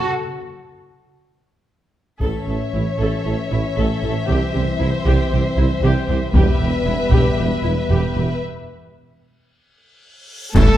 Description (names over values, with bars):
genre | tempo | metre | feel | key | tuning
cinematic, epic orchestral film score | 115 BPM | 4/4 | straight | unclear | A4 = 440 Hz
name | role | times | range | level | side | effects
warm symphonic violin section | second line | 0.0-10.8 s | A4 to C#5 | -27 LUFS | left 2 dB | none
warm French horn section | sustained chords | 0.0-10.8 s | E3 to C#4 | -27 LUFS | left 4 dB | none
warm symphonic cello section | bass | 0.0-10.8 s | E2 to A3 | -26 LUFS | right 3 dB | none
rich symphonic violin section | melody | 2.2-10.8 s | E5 to A5 | -30 LUFS | left 5 dB | none
warm symphonic viola section | accompaniment | 2.2-10.6 s | C#4 to A4 | -27 LUFS | equal | none
rich symphonic double bass section | bass | 2.2-10.6 s | E1 to C2 | -22 LUFS | right 2 dB | none
warm tuba | bass | 2.2-10.7 s | E1 to C2 | -26 LUFS | right 3 dB | none
taiko ensemble | drums | 2.2-10.8 s | none | -18 LUFS | equal | none
triangle, clash cymbals and concert bass drum | percussion | 2.2-3.2, 10.6-10.8 s | none | -14 LUFS | equal | none
reverse cymbal and impact | sound effects | 10.3-10.8 s | none | -24 LUFS | left 1 dB | none
dark trumpet section | stabs | 10.6-10.8 s | A4 | -20 LUFS | equal | none
room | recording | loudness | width
moderate scoring stage reverb, RT60 1.5 s | none | -16 LUFS | side -12 dB against mid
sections
0.0-2.2 A section; 2.2-10.6 B section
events
break 0.1-2.2, 8.4-10.6; drum fill 9.8-10.6; reverse cymbal 10.3; band accent 10.6; impact 10.6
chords
0.1 N.C.; 2.2 A; 4.3 C; 6.4 Em; 8.4 N.C.